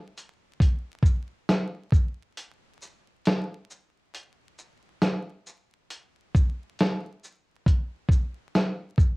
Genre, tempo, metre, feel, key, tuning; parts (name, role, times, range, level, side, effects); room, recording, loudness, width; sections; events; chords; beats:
hip hop; 68 BPM; 4/4; swing 64% on 16ths
dusty soul sampler-style drum kit; drums; 0.2-9.2 s; hi-hat, kick drum, shaker, snare drum; -22 LUFS; equal; cassette tape
moderate studio reverb, RT60 0.6 s; home recording on cassette, vinyl crackle; -24 LUFS; side -28 dB against mid
0.6-9.2 A section
| 0.60 1.48 2.37 3.25 | 4.13 5.01 5.89 6.78 | 7.66 8.54